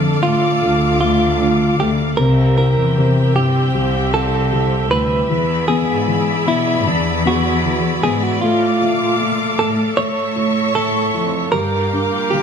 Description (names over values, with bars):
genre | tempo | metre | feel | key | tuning
pop ballad | 77 BPM | 4/4 | straight | D minor | A4 = 440 Hz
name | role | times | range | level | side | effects
direct-recorded clean electric guitar | melody | 0.0-12.4 s | D4 to C#5 | -19 LUFS | right 2 dB | tremolo
felt-muted upright piano | accompaniment | 0.0-12.4 s | C3 to E4 | -19 LUFS | left 3 dB | none
clear studio string section | sustained chords | 0.0-12.4 s | C4 to D6 | -22 LUFS | left 1 dB | none
warm studio cello section | bass | 0.0-12.4 s | C2 to B2 | -21 LUFS | right 1 dB | none
room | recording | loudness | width
wet stone room reverb, RT60 1.1 s | band playing live in one room | -14 LUFS | side -7 dB against mid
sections
0.0-12.4 A section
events
none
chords
0.0 Dm; 2.2 C7; 5.3 E7; 8.4 Dm/A; 10.0 A; 11.5 Gm7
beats
0.62 1.40 | 2.18 2.96 3.73 4.51 | 5.29 6.07 6.85 7.63 | 8.41 9.19 9.97 10.75 | 11.53 12.31